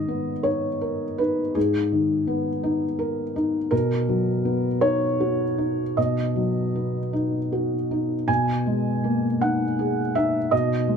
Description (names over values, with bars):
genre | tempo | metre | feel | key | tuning
neoclassical minimalist piano | 52-57 BPM (dotted quarters) | 6/8 | rubato | G# minor | A4 = 439 Hz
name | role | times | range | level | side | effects
felt-muted upright piano | solo | 0.0-11.0 s | G#2 to G#5 | -21 LUFS | equal | none
room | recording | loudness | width
light reverb | dark, warm production, lossy compression artefacts | -21 LUFS | side -6 dB against mid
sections
0.0-11.0 A section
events
none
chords
0.0 G#madd9; 3.7 Bmaj7; 8.3 G#madd9/B